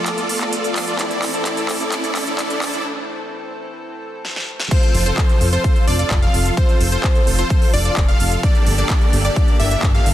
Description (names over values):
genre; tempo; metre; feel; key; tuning
EDM, festival progressive house; 129 BPM; 4/4; straight; unclear; A4 = 440 Hz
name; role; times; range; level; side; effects
lush unison pad; sustained chords; 0.0-10.1 s; C3 to E5; -29 LUFS; equal; chorus, sidechain pumping
supersaw chords; riff; 0.0-10.1 s; Bb3 to F5; -23 LUFS; equal; wide subtle chorus, sidechain pumping, ping-pong delay
riser; sound effects; 0.0-2.9 s; none; -29 LUFS; right 1 dB; none
big-room dance drum kit; drums; 0.1-10.1 s; crash cymbal, handclaps, hi-hat, snare drum; -25 LUFS; equal; soft clipping on snare
plucky unison lead; arpeggios; 4.7-10.1 s; C5 to F5; -23 LUFS; left 1 dB; sidechain pumping, ping-pong delay
electronic kick drum; drums; 4.7-9.9 s; none; -15 LUFS; equal; overdrive
fat analog bass; bass; 4.9-10.1 s; F1 to G1; -19 LUFS; equal; sidechain pumping
room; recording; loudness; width
light reverb, digital ambience; dense, heavily limited modern master, high-pass filter; -15 LUFS; side -13 dB against mid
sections
0.0-4.7 A section; 4.7-10.1 B section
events
build-up 0.0-4.7; drum fill 0.0-2.9, 4.2-4.7; riser 0.0-2.9; filter sweep 0.0-4.7; break 2.9-4.7; drop 4.7-10.1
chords
0.0 Dm; 1.0 Am; 4.7 F; 8.4 Gmadd9